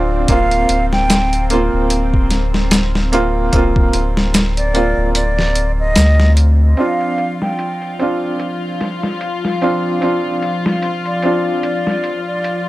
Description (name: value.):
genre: trip hop.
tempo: 74 BPM.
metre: 4/4.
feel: swing 57% on 16ths.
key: D minor.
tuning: A4 = 440 Hz.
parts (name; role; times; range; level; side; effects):
clear upright piano; accompaniment; 0.0-12.7 s; Bb3 to F4; -19 LUFS; right 1 dB; tremolo, tape echo.
round analog bass; bass; 0.0-6.7 s; D1 to D2; -15 LUFS; equal; tube saturation.
bowed-like drone; texture; 0.0-12.7 s; C4 to F4; -27 LUFS; left 2 dB; built-in reverb.
wooden flute; melody; 0.3-12.7 s; D5 to G5; -21 LUFS; right 1 dB; tape echo.
dusty soul sampler-style drum kit; drums; 0.3-12.7 s; hi-hat, kick drum, snare drum; -17 LUFS; equal; low-pass filter on snare, small room reverb, low-pass filter on hats, low-pass filter on kick.
maracas; percussion; 1.1-6.2 s; none; -25 LUFS; right 4 dB; none.
rich chamber string section; sustained chords; 6.8-12.7 s; F3 to F4; -22 LUFS; left 2 dB; vintage 12-bit sampler grit.
room: little or no reverb.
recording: dry, gritty hardware recording.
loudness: -13 LUFS.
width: side -17 dB against mid.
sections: 0.0-6.8 A section; 6.8-12.7 B section.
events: none.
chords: 0.3 Fsus4/D; 6.8 Dm7.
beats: | 0.29 1.10 1.91 2.72 | 3.53 4.34 5.15 5.96 | 6.77 7.58 8.40 9.21 | 10.02 10.83 11.64 12.45.